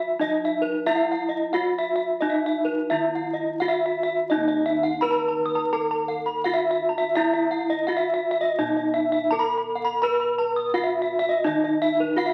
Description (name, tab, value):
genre	Balinese gamelan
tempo	84 BPM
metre	4/4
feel	straight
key	Eb pelog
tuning	A4 = 440 Hz
part	gamelan-type bronze metallophone	melody	0.0-12.3 s	Eb4 to Cb5-40c	-27 LUFS	equal	none
part	gamelan-type bronze metallophone	arpeggios	0.0-12.3 s	Cb5-40c to Eb6	-27 LUFS	equal	none
part	gamelan-type bossed gongs	bass	0.0-12.3 s	Eb2 to Cb5-40c	-38 LUFS	equal	none
room	wet large studio reverb, RT60 0.9 s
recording	very old 78 rpm record, vinyl crackle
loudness	-24 LUFS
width	mono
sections	0.0-4.3 A section; 4.3-12.3 B section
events	none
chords	none